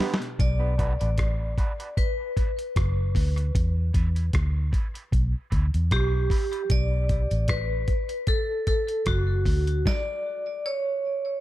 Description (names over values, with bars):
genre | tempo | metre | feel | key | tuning
dub reggae | 76 BPM | 4/4 | swing 56% on 16ths | B minor | A4 = 441 Hz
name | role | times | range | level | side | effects
mellow electric guitar | accompaniment | 0.0-6.6 s | G3 to B4 | -38 LUFS | right 4 dB | high-pass filter, tape echo
dusty soul sampler-style drum kit | drums | 0.0-10.1 s | hi-hat, kick drum, rim click, snare drum | -26 LUFS | equal | none
vibraphone with hard mallets | melody | 0.4-11.4 s | F#4 to D5 | -29 LUFS | equal | tape echo
vintage muted fingered electric bass | bass | 0.4-9.8 s | F#1 to E2 | -24 LUFS | equal | none
room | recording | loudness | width
digital ambience | dark, warm production | -23 LUFS | side -15 dB against mid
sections
0.4-11.4 A section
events
drum fill 0.0-0.4; filter sweep on clean electric guitar 0.0-6.7; stop 9.9-11.4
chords
0.4 Bm7; 3.5 Em7; 6.7 Bm7; 9.9 N.C.